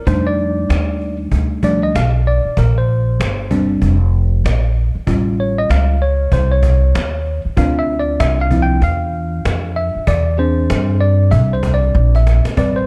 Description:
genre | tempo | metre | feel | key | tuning
hip hop, jazz-hop | 96 BPM | 4/4 | swing 60% on 16ths | unclear | A4 = 437 Hz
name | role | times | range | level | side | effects
tine electric piano | accompaniment | 0.0-12.9 s | F3 to G5 | -21 LUFS | equal | overdrive
upright bass | bass | 0.1-12.9 s | F1 to G2 | -17 LUFS | equal | none
cajon | drums | 0.1-12.7 s | none | -26 LUFS | equal | none
room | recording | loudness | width
small room ambience | dark, warm production | -16 LUFS | mono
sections
0.0-12.6 A section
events
tine electric piano solo 0.0-12.6; drum fill 11.9-12.6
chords
0.1 F13; 2.6 Bb69; 5.1 A7alt; 7.6 Dm9; 10.1 E7alt

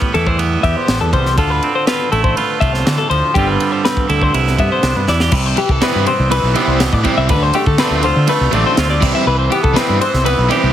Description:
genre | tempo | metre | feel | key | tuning
math rock and midwest emo | 122 BPM | 4/4 | straight | C major | A4 = 440 Hz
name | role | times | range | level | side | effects
twangy electric guitar | accompaniment | 0.0-10.7 s | E2 to G4 | -19 LUFS | right 6 dB | plate reverb
twelve-string electric guitar | arpeggios | 0.0-10.7 s | G4 to E5 | -18 LUFS | left 6 dB | slapback echo, plate reverb
crisp fusion drum kit | drums | 0.0-10.6 s | crash cymbal, kick drum, ride cymbal, snare drum | -19 LUFS | equal | none
fuzz fingered electric bass | bass | 0.1-10.7 s | G1 to D3 | -17 LUFS | equal | overdrive
cranked stack guitar | riff | 5.3-10.7 s | C3 to F4 | -19 LUFS | right 1 dB | overdrive
room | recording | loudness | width
light reverb | heavily compressed radio sound | -12 LUFS | side -11 dB against mid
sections
0.0-5.3 A section; 5.3-10.7 B section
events
drum fill 5.1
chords
0.0 Am9; 1.4 Dm7; 3.4 G7sus4; 4.3 Cmaj9; 5.3 Cmaj7; 7.3 Dm7; 9.0 Cmaj7

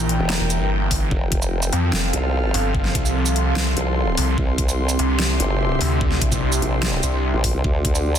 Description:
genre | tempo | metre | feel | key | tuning
heavy wobble dubstep | 147 BPM | 4/4 | half-time | unclear | A4 = 440 Hz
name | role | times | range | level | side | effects
evolving wavetable pad | sustained chords | 0.0-8.2 s | C3 to F5 | -27 LUFS | left 1 dB | chorus, built-in reverb, sidechain pumping
snarling distorted saw bass | bass | 0.0-7.3 s | E1 to F2 | -22 LUFS | equal | distortion, overdrive
airy breathy pad | texture | 0.0-8.2 s | C4 to C6 | -26 LUFS | equal | chorus, sidechain pumping
dubstep drum kit | drums | 0.1-8.2 s | hi-hat, shaker, snare drum | -25 LUFS | equal | overdrive
formant-sweep wobble bass | bass | 0.2-8.2 s | E1 to D2 | -22 LUFS | equal | chorus, overdrive
electronic kick drum | drums | 0.9-7.9 s | none | -22 LUFS | equal | overdrive
room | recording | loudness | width
light reverb | dense, heavily limited modern master | -18 LUFS | side -9 dB against mid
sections
0.0-8.2 A section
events
none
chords
0.0 Edim; 1.1 F; 4.4 Cadd9; 7.6 Dm

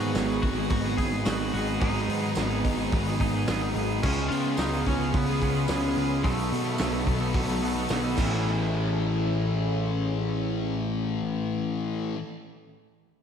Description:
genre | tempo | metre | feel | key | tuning
rock, shoegaze and dream pop | 108 BPM | 4/4 | straight | A lydian | A4 = 440 Hz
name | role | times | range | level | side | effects
twangy electric guitar | melody | 0.0-7.9 s | A3 to G#4 | -35 LUFS | left 1 dB | lush chorus, ping-pong delay
deep dark ambient pad | sustained chords | 0.0-11.4 s | A3 to B5 | -36 LUFS | right 1 dB | chorus, built-in reverb
electric guitar through a small old amp | arpeggios | 0.0-12.2 s | E3 to G#4 | -34 LUFS | right 2 dB | analog chorus, ping-pong delay
sludgy distorted guitar | riff | 0.0-12.2 s | G#2 to C#4 | -35 LUFS | right 1 dB | overdrive
thick fuzz guitar | riff | 0.0-12.2 s | G#2 to C#4 | -31 LUFS | left 6 dB | distortion, lush chorus
twangy electric guitar | riff | 0.0-12.2 s | G#2 to A4 | -35 LUFS | right 8 dB | reverse reverb
fuzz picked electric bass | bass | 0.0-12.1 s | G#1 to C#3 | -30 LUFS | equal | overdrive
tambourine | percussion | 0.1-8.7 s | none | -44 LUFS | right 11 dB | none
loose indie drum kit | drums | 0.2-8.3 s | crash cymbal, hi-hat, kick drum, snare drum | -31 LUFS | equal | none
room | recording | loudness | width
wet lush hall reverb, RT60 1.9 s, small room ambience | dreamy mix soaked in reverb | -24 LUFS | side -8 dB against mid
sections
0.0-8.5 A section; 8.5-10.7 B section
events
none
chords
0.0 G#m7; 4.0 C#7; 6.2 B7; 8.2 Amaj7

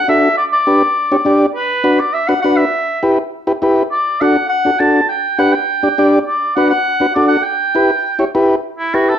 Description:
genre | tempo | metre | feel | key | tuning
latin | 203 BPM | 4/4 | straight | unclear | A4 = 440 Hz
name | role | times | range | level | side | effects
clear oboe | melody | 0.0-9.2 s | E4 to A5 | -15 LUFS | equal | plate reverb
overdriven combo organ | accompaniment | 0.1-9.1 s | D4 to D5 | -14 LUFS | left 1 dB | none
room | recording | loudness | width
moderate large studio reverb, RT60 0.9 s | dark, warm production | -12 LUFS | side -9 dB against mid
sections
0.0-8.6 A section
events
none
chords
0.4 G; 1.6 Bm; 2.7 Em; 3.9 D; 5.1 G; 6.3 Bm7; 7.5 Em

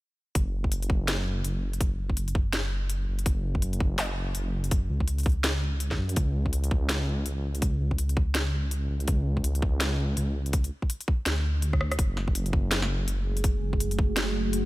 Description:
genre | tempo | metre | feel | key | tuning
half-time drum and bass | 165 BPM | 4/4 | swing 60% on 16ths, half-time | F# minor | A4 = 440 Hz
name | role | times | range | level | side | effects
dark detuned saw bass | bass | 0.4-14.7 s | F#1 to F#2 | -28 LUFS | equal | none
drum and bass drum kit | drums | 0.4-14.6 s | hi-hat, rim click, snare drum | -31 LUFS | equal | small room ambience
electronic kick drum | drums | 0.4-14.1 s | none | -26 LUFS | equal | small room ambience
deep dark ambient pad | sustained chords | 13.2-14.7 s | A3 to C#5 | -32 LUFS | right 1 dB | chorus, built-in reverb, sidechain pumping
room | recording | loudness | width
digital ambience | none | -25 LUFS | side -18 dB against mid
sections
0.4-14.7 A section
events
drum fill 11.7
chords
0.4 F#5; 6.2 N.C.; 12.0 F#madd9

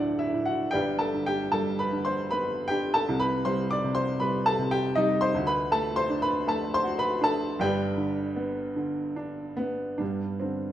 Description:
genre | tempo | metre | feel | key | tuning
classical, lyrical solo piano | 71-81 BPM | 3/4 | rubato | G major | A4 = 441 Hz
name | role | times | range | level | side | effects
clear upright piano | solo | 0.0-10.7 s | D1 to D6 | -25 LUFS | equal | none
room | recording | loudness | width
moderate recital hall reverb, RT60 1.5 s | none | -25 LUFS | side -11 dB against mid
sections
0.0-10.0 A section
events
none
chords
0.0 D; 0.8 G; 3.1 Cmadd9; 5.3 D; 7.6 G

